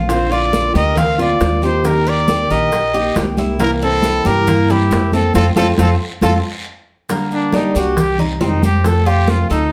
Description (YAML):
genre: latin, Cuban son and guajira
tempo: 137 BPM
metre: 4/4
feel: straight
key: unclear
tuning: A4 = 440 Hz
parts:
  - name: nylon-string guitar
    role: accompaniment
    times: 0.0-9.7 s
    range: C3 to G4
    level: -24 LUFS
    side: equal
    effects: none
  - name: Cuban tres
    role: arpeggios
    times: 0.0-9.7 s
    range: Bb3 to Bb4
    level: -25 LUFS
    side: equal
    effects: none
  - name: upright bass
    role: bass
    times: 0.0-9.7 s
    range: Bb1 to G2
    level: -21 LUFS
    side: equal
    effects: none
  - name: breathy trumpet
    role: melody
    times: 0.1-9.7 s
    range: C4 to F5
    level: -21 LUFS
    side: equal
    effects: none
  - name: flamenco guitar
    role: second line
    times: 0.1-6.4 s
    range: A3 to Bb4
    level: -23 LUFS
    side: equal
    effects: none
  - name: bongos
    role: percussion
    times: 0.1-9.7 s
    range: none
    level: -27 LUFS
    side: equal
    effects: none
  - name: congas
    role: percussion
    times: 0.1-9.7 s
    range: none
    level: -24 LUFS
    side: equal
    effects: none
  - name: guiro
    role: percussion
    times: 0.1-9.7 s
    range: none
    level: -36 LUFS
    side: equal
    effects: none
  - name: maracas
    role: percussion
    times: 0.1-9.7 s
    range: none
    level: -39 LUFS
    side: equal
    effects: none
room: wet studio reverb, RT60 0.8 s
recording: heard from further back in the room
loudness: -15 LUFS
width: mono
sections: 0.0-7.1 A section; 7.1-9.7 B section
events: band accent 5.3-7.1; trumpet solo 7.1-9.7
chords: 0.1 Bbadd9; 1.8 Eb; 3.6 C7; 5.3 F; 7.1 Gm; 8.0 Cm; 8.8 F